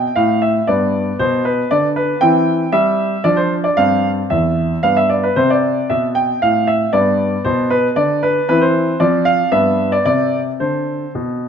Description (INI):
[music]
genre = classical-period piano sonatina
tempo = 115 BPM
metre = 3/4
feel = straight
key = C major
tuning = A4 = 440 Hz
[part]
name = clear concert grand piano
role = solo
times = 0.0-11.5 s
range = E2 to G5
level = -14 LUFS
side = equal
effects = none
[sound]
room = moderate recital hall reverb, RT60 1.5 s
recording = minimal, uncompressed stereo recording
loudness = -13 LUFS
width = side -7 dB against mid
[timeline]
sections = 0.0-11.5 A section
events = none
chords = 0.0 Am7; 0.7 G; 2.2 C/E; 3.2 Dm7/F; 3.8 C/G; 4.8 G; 5.4 Am11; 6.9 G; 8.5 C/E; 9.0 Dm7/F; 9.5 G; 10.1 Csus2